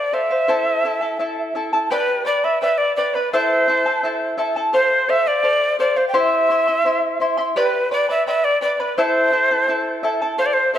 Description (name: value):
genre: andean folk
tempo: 85 BPM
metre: 2/4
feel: straight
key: A minor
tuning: A4 = 437 Hz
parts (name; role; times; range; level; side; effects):
- breathy quena; melody; 0.0-10.8 s; B4 to G5; -18 LUFS; equal; none
- charango; accompaniment; 0.0-10.8 s; E4 to C6; -20 LUFS; left 1 dB; none
room: moderate scoring stage reverb, RT60 1.7 s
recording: none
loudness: -16 LUFS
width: side -10 dB against mid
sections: 0.0-1.9 A section; 1.9-10.8 A section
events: none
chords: 0.5 Am; 1.9 G; 3.3 Am; 4.7 F; 6.1 C; 7.6 G; 9.0 Am